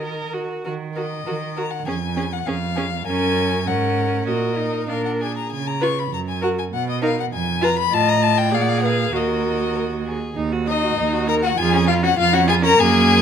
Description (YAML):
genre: quick classical-period movement for string quartet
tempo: 99 BPM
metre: 2/4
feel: straight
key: Eb minor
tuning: A4 = 437 Hz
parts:
  - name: rich violin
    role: melody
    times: 0.0-13.2 s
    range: Eb5 to Db6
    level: -23 LUFS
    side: left 8 dB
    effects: none
  - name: rich violin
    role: second line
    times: 0.0-13.2 s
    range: Eb4 to Eb5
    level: -23 LUFS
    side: left 3 dB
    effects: none
  - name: bright viola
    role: accompaniment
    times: 0.0-13.2 s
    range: Bb3 to Bb4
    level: -25 LUFS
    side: right 4 dB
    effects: none
  - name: clear cello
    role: bass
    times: 0.0-13.2 s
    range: Eb2 to Eb3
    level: -23 LUFS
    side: right 5 dB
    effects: none
room: moderate recital hall reverb, RT60 1.3 s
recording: close, detailed microphones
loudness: -18 LUFS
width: side -8 dB against mid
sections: 0.7-10.4 A section; 10.4-13.2 A section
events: none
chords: 0.0 Ebm; 1.9 Db/F; 3.1 Gb; 4.3 Ebm/Bb; 4.9 Bb; 5.5 Db7; 6.1 Gb; 6.7 Bmaj7; 7.3 Fdim; 7.9 F7/A; 8.5 Bb7; 9.1 Ebm; 11.6 Db/F